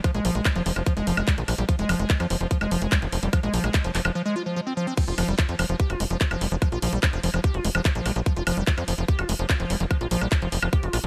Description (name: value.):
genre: psychedelic trance.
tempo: 146 BPM.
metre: 4/4.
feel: straight.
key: F minor.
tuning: A4 = 440 Hz.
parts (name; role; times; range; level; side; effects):
liquid acid bass; riff; 0.0-11.1 s; Eb3 to G4; -30 LUFS; equal; chorus, sidechain pumping, dub echo.
electronic kick drum; drums; 0.0-10.8 s; none; -24 LUFS; equal; studio reverb.
garage drum kit; drums; 0.0-11.1 s; crash cymbal, handclaps, hi-hat, woodblock; -32 LUFS; equal; studio reverb.
tight sequencer bass; bass; 0.1-11.1 s; F1 to F2; -29 LUFS; equal; none.
room: little or no reverb.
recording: none.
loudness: -24 LUFS.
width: mono.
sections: 0.0-5.0 A section; 5.0-11.1 B section.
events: break 4.2-5.0; drop 5.0-11.1.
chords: 0.0 F5.